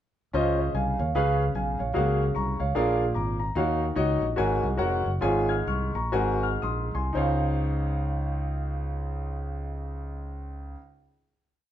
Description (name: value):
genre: uptempo gospel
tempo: 111-149 BPM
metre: 4/4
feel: swing 61% on 8ths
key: Db major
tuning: A4 = 440 Hz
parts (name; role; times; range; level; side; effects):
- clear concert grand piano; accompaniment; 0.3-10.8 s; Db2 to Ab6; -26 LUFS; equal; none
- fingered electric bass; bass; 0.3-10.7 s; F1 to Eb2; -28 LUFS; equal; none
room: moderate large studio reverb, RT60 0.9 s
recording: band playing live in one room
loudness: -24 LUFS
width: side -11 dB against mid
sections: 0.3-7.2 breakdown; 7.2-11.5 final chord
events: slowing down 3.6-7.2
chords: 0.3 Dbmaj9; 1.1 Db7; 1.9 Gbmaj9/Db; 2.8 Bb7; 3.6 Ebm9; 4.4 Ab9sus4; 5.2 Db/Ab; 6.1 Ab9; 7.2 Dbmaj9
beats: | 0.34 0.74 1.14 1.54 | 1.95 2.35 2.75 3.15 | 3.56 3.96 4.37 4.79 | 5.22 5.67 6.14 6.63 | 7.15 7.69 8.23 8.77 | 9.31 9.86 10.40